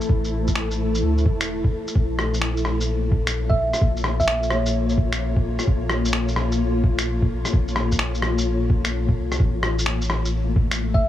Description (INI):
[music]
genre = future garage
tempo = 129 BPM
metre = 4/4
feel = swing 66% on 16ths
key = unclear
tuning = A4 = 441 Hz
[part]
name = granular cloud pad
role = sustained chords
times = 0.0-11.1 s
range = A3 to Db5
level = -27 LUFS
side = left 2 dB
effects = built-in reverb, sidechain pumping
[part]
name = electronic shaker, finger snaps and rim click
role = drums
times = 0.0-10.8 s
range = none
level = -26 LUFS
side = equal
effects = none
[part]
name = wind-like tuned noise texture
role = texture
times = 0.0-9.4 s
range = A4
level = -35 LUFS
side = left 2 dB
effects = built-in reverb
[part]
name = warm sub bass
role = bass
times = 0.1-11.1 s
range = E1 to D2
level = -24 LUFS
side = left 1 dB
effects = sidechain pumping
[part]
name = electronic kick drum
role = drums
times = 0.1-11.0 s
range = none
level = -20 LUFS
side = equal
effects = none
[part]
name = thumb-piano-like synth pluck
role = melody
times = 3.5-5.0, 10.9-11.1 s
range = Db5 to E5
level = -26 LUFS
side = right 2 dB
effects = chorus, tape echo
[sound]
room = moderate huge ambient reverb, RT60 6.9 s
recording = none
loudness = -19 LUFS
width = side -12 dB against mid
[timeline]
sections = 0.0-9.4 A section; 9.4-11.1 B section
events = none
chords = 0.0 Am; 2.0 Bbm; 9.4 A5